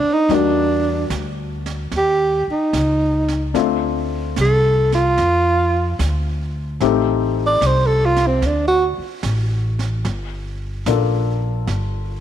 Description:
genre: jazz ballad.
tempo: 74 BPM.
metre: 4/4.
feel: swing 68% on 8ths.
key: unclear.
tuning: A4 = 440 Hz.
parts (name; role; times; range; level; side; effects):
breathy tenor saxophone; melody; 0.0-8.9 s; C4 to D5; -17 LUFS; right 2 dB; none.
dark upright piano; accompaniment; 0.0-12.2 s; G3 to A4; -21 LUFS; left 12 dB; none.
upright bass; bass; 0.0-12.2 s; G1 to F2; -21 LUFS; equal; none.
jazz brush drum kit; drums; 0.3-12.2 s; brushed snare drum, hi-hat, snare drum; -33 LUFS; right 7 dB; none.
room: light reverb, small room reverb.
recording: 1960s-style stereo with parts hard left and right.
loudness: -16 LUFS.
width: side -10 dB against mid.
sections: 0.0-12.2 A section.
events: tenor saxophone solo 0.0-12.2.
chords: 0.3 Em7b5; 1.9 Eb7; 3.5 Dm7; 6.8 Am7b5; 8.4 D5; 10.1 Gm7.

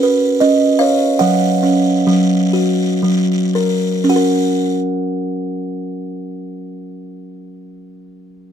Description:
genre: children's music, lullaby.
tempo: 52-79 BPM.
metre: 3/4.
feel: straight.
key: F# major.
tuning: A4 = 439 Hz.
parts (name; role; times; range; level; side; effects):
buzzing kalimba; solo; 0.0-7.9 s; F#3 to F#5; -14 LUFS; right 1 dB; none.
room: light reverb.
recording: close, detailed microphones.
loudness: -13 LUFS.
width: side -8 dB against mid.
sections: 0.0-4.1 A section; 4.1-7.5 B section.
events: slowing down 0.0-4.1.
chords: 0.0 C#9; 1.2 F#.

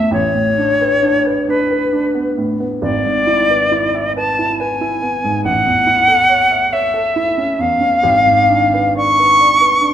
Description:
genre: classical, romantic duo for flute and grand piano.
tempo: 68 BPM.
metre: 3/4.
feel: uneven beats, rubato.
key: A major.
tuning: A4 = 441 Hz.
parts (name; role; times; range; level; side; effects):
silver concert flute; melody; 0.0-9.9 s; B4 to C#6; -13 LUFS; left 1 dB; none.
dark baby grand piano; accompaniment; 0.0-9.9 s; G#1 to E5; -18 LUFS; right 3 dB; none.
room: moderate recital hall reverb, RT60 1.5 s.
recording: none.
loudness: -12 LUFS.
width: side -10 dB against mid.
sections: 0.0-9.9 A section.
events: none.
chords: 0.1 Bm7/A; 2.8 E7/G#; 5.4 A; 8.0 G#dim7.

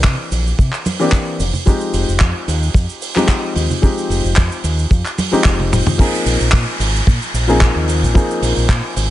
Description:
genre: nu-disco, nu disco.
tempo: 111 BPM.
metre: 4/4.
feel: swing 54% on 16ths.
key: Bb mixolydian.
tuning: A4 = 440 Hz.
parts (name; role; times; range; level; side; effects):
dark baby grand piano; accompaniment; 0.0-9.1 s; E3 to Ab4; -20 LUFS; left 2 dB; sidechain pumping, ping-pong delay.
fingered electric bass with an envelope filter; bass; 0.0-9.1 s; F1 to C3; -18 LUFS; equal; none.
damped 70s drum kit; drums; 0.0-9.1 s; cabasa, crash cymbal, handclaps, hi-hat, toms; -21 LUFS; right 1 dB; none.
kick drum; drums; 0.0-8.8 s; none; -13 LUFS; equal; none.
congas; percussion; 0.9-6.0 s; none; -21 LUFS; right 2 dB; none.
downlifter; sound effects; 6.0-9.1 s; none; -26 LUFS; left 1 dB; none.
room: small room ambience.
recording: nothing above 10.7 kHz.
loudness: -13 LUFS.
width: side -14 dB against mid.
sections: 0.0-6.0 A section; 6.0-9.1 B section.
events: drum fill 5.6-6.0; drop 6.0-9.1.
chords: 0.0 C9; 1.4 Fm7; 6.0 Bb9sus4.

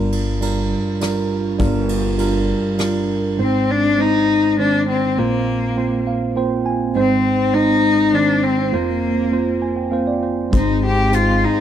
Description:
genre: acoustic folk-pop ballad.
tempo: 101 BPM.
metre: 3/4.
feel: straight.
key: unclear.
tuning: A4 = 436 Hz.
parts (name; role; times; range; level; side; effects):
tine electric piano; accompaniment; 0.0-11.6 s; F1 to Ab5; -19 LUFS; right 3 dB; phaser.
upright bass; bass; 0.0-2.5, 10.5-11.4 s; G1 to Ab1; -21 LUFS; left 2 dB; none.
soft brush drum kit; drums; 0.1-2.9, 10.5-11.3 s; hi-hat, kick drum, ride cymbal, rim click; -26 LUFS; equal; none.
rich cello; melody; 3.4-11.6 s; Bb3 to G4; -17 LUFS; left 4 dB; tape echo.
hand-pumped harmonium; sustained chords; 10.5-11.6 s; Ab3 to C6; -29 LUFS; left 4 dB; none.
room: little or no reverb.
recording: dry, close 1970s-style studio recording.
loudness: -16 LUFS.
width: side -10 dB against mid.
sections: 0.0-3.4 A section; 3.4-11.6 B section.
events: none.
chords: 0.0 Gm7; 3.4 Ab; 5.2 Bbsus2; 7.0 Ab; 8.7 Fsus4; 10.5 Ab.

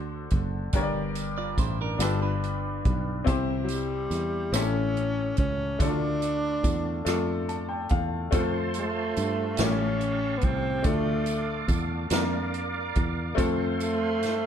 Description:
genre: slow gospel.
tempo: 48 BPM (dotted quarters).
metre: 6/8.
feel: straight.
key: unclear.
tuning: A4 = 444 Hz.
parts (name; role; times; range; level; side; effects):
clear grand piano; accompaniment; 0.0-14.5 s; G2 to A5; -30 LUFS; left 5 dB; none.
fingered electric bass; bass; 0.0-14.5 s; F#1 to G2; -31 LUFS; right 1 dB; none.
swinging big-band drum kit; drums; 0.3-14.4 s; hi-hat, kick drum, rim click, snare drum; -29 LUFS; right 1 dB; none.
tambourine; percussion; 0.7-14.5 s; none; -39 LUFS; right 7 dB; none.
clean electric guitar; second line; 1.4-3.2 s; D4 to D5; -34 LUFS; right 7 dB; none.
breathy tenor saxophone; melody; 3.6-14.5 s; Gb3 to D4; -29 LUFS; right 2 dB; slapback echo.
bright tonewheel organ; sustained chords; 8.3-14.5 s; F4 to D6; -34 LUFS; right 4 dB; slow rotary speaker, chorus vibrato.
room: light reverb.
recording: dark, warm production.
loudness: -24 LUFS.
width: side -8 dB against mid.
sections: 0.0-14.5 A section.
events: grand piano fill 7.1-8.3.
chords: 0.0 D7; 0.7 Gm; 2.0 G7; 3.3 C; 4.5 A7; 5.8 Dm; 8.3 F; 9.6 A7alt; 10.9 Dm; 12.1 Bb/F; 13.4 F.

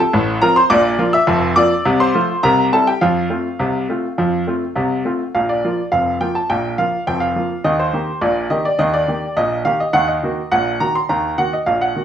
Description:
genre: ragtime piano.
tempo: 104 BPM.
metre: 2/4.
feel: straight.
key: F major, Bb major from 5.3 s.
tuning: A4 = 440 Hz.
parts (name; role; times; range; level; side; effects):
bright grand piano; solo; 0.0-12.0 s; F1 to E6; -15 LUFS; equal; none.
room: moderate small room reverb, RT60 0.5 s.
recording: rough home demo mix, studio reverb.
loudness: -15 LUFS.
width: side -9 dB against mid.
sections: 0.0-5.3 A section; 5.3-12.0 B section.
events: none.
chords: 0.0 F/A; 0.7 Bb; 1.9 F/C; 2.4 C7; 3.0 F; 5.3 Bb5; 7.6 Eb; 9.9 Ebm.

